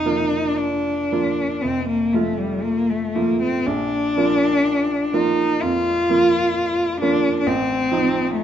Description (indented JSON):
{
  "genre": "classical, romantic duo for cello and grand piano",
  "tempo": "56-67 BPM",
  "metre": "4/4",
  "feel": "rubato",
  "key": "Bb major",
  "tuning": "A4 = 436 Hz",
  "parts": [
    { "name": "rich cello", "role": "melody", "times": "0.0-8.4 s", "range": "G3 to F4", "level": "-19 LUFS", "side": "left 2 dB", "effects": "none" },
    { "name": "bright baby grand piano", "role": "accompaniment", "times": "0.0-8.4 s", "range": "F1 to F4", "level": "-23 LUFS", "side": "right 4 dB", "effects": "none" }
  ],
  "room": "moderate large studio reverb, RT60 1.5 s",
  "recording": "nothing above 7.7 kHz",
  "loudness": "-18 LUFS",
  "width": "side -10 dB against mid",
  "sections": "0.0-8.4 A section",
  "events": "none",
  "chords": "0.0 Bb/F; 1.6 F; 3.7 Bb; 7.5 F7/A"
}